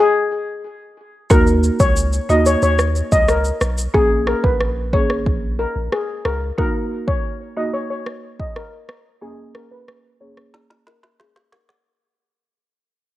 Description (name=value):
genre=dancehall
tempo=91 BPM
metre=4/4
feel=straight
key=Bb phrygian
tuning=A4 = 440 Hz
part: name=steel pan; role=melody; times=0.0-11.7 s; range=Ab4 to Eb5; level=-19 LUFS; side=left 2 dB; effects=low-pass filter, cassette tape, tape echo
part: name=marimba with medium mallets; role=accompaniment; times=1.3-10.5 s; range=Bb3 to Ab4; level=-23 LUFS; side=right 2 dB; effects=low-pass filter
part: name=punchy sub bass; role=bass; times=1.3-6.5 s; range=Ab1 to Eb2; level=-21 LUFS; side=equal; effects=none
part: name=organic electronic drum kit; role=drums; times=1.3-11.8 s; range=kick drum, rim click, shaker, snare drum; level=-19 LUFS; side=equal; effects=overdrive, cassette tape
room=digital ambience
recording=home recording on cassette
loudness=-16 LUFS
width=side -15 dB against mid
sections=0.0-1.3 A section; 1.3-11.9 B section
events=break 0.0-1.3; fade-out 1.3-11.9; filter sweep 1.3-11.9; drum fill 10.5-11.9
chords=0.0 N.C.; 1.3 Ebm; 3.9 Bbm7; 6.6 Ebm; 9.2 Bbm7